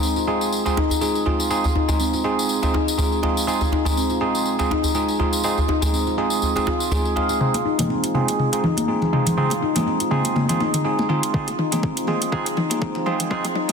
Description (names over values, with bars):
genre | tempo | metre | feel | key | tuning
afro house | 122 BPM | 4/4 | swing 55% on 16ths | F minor pentatonic | A4 = 440 Hz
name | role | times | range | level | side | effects
handpan | arpeggios | 0.0-13.7 s | C4 to F5 | -23 LUFS | left 1 dB | sidechain pumping, low-pass filter, ping-pong delay
bell-like tine electric piano | stabs | 0.0-13.7 s | Ab3 to Ab4 | -24 LUFS | right 2 dB | sidechain pumping, low-pass filter, ping-pong delay
tambourine | percussion | 0.0-7.4 s | none | -29 LUFS | left 2 dB | none
djembe | percussion | 0.7-7.3 s | none | -24 LUFS | right 1 dB | none
afro-pop drum kit | drums | 7.4-13.7 s | hi-hat, toms | -24 LUFS | left 1 dB | none
congas | percussion | 7.5-13.7 s | none | -26 LUFS | left 1 dB | none
electronic kick drum | drums | 11.3-13.4 s | none | -26 LUFS | equal | overdrive
room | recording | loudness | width
moderate lush hall reverb, RT60 1.7 s, small room ambience | dense, heavily limited modern master, high-pass filter | -19 LUFS | side -6 dB against mid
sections
0.0-7.4 A section; 7.4-13.7 B section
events
build-up 7.4-13.7; drum fill 7.4-13.7; filter sweep on tine electric piano 7.4-13.7; filter sweep 7.4-13.7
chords
0.0 Fm7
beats
0.03 0.53 1.02 | 1.51 2.00 2.49 2.98 | 3.48 3.97 4.46 4.95 | 5.44 5.93 6.43 6.92 | 7.41 7.90 8.39 8.88 | 9.38 9.87 10.36 10.85 | 11.34 11.84 12.33 12.82 | 13.31